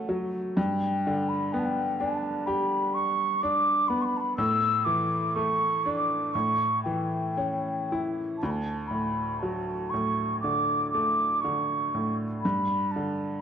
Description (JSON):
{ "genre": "celtic folk, Celtic slow air", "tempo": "61 BPM", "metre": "4/4", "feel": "uneven beats, rubato", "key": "D major", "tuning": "A4 = 440 Hz", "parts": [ { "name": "mellow hollow wooden flute", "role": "melody", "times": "0.0-13.4 s", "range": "G5 to E6", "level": "-27 LUFS", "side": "equal", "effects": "none" }, { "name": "bright upright piano", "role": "accompaniment", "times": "0.0-13.4 s", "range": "D2 to G4", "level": "-29 LUFS", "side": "equal", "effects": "none" } ], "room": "moderate recital hall reverb, RT60 1.4 s", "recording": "dark, warm production", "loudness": "-25 LUFS", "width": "side -8 dB against mid", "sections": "0.0-8.4 A section; 8.4-13.4 B section", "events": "none", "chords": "0.0 F#m; 0.6 G; 4.4 Asus4; 6.3 A; 8.4 D; 12.4 G", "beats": "| 0.58 1.53 2.48 3.43 | 4.38 5.36 6.34 7.37 | 8.41 9.42 10.43 11.43 | 12.44" }